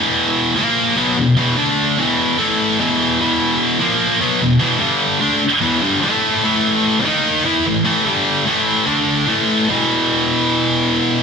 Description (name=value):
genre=rock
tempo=148 BPM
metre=4/4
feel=straight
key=E phrygian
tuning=A4 = 435 Hz
part: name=heavy high-gain guitar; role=solo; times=0.0-11.2 s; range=E2 to E4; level=-14 LUFS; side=equal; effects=distortion
room=wet stone room reverb, RT60 1.3 s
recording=band playing live in one room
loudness=-14 LUFS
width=side -5 dB against mid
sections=0.0-3.2 A section; 3.2-9.7 B section; 9.7-11.2 C section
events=none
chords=0.0 E5; 0.6 A#5; 1.0 E5; 1.6 D5; 2.0 E5; 2.4 A5; 2.8 E5; 3.8 A#5; 4.2 E5; 4.8 G5; 5.2 Em; 6.0 A5; 7.0 D#5; 7.5 A5; 8.1 G5; 8.5 A5; 8.9 D5; 9.3 A5; 9.7 E5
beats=0.35 0.76 1.16 | 1.57 1.97 2.38 2.78 | 3.19 3.60 4.00 4.41 | 4.81 5.22 5.63 6.03 | 6.44 6.85 7.25 7.66 | 8.07 8.47 8.88 9.28 | 9.69 10.10 10.50 10.91